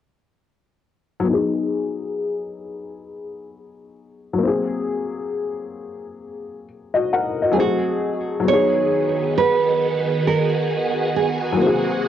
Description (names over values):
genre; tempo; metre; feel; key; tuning
hip hop; 67 BPM; 4/4; swing 63% on 16ths; unclear; A4 = 437 Hz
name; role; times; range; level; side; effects
dark upright piano; accompaniment; 1.2-12.1 s; F#3 to Gb5; -22 LUFS; left 4 dB; low-pass filter, cassette tape
nylon-string guitar; melody; 7.5-12.1 s; Gb4 to Db5; -21 LUFS; right 6 dB; low-pass filter, cassette tape, analog delay
phased string machine; sustained chords; 8.4-12.1 s; C3 to G#4; -22 LUFS; right 1 dB; ensemble chorus, phaser, low-pass filter, cassette tape
room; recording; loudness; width
moderate small room reverb, RT60 0.6 s; home recording on cassette; -18 LUFS; side -10 dB against mid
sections
1.3-8.5 A section; 8.5-12.1 B section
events
filter sweep on upright piano 1.3-8.5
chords
1.3 B6; 4.4 Ab9; 7.6 Ab7b9; 8.5 B6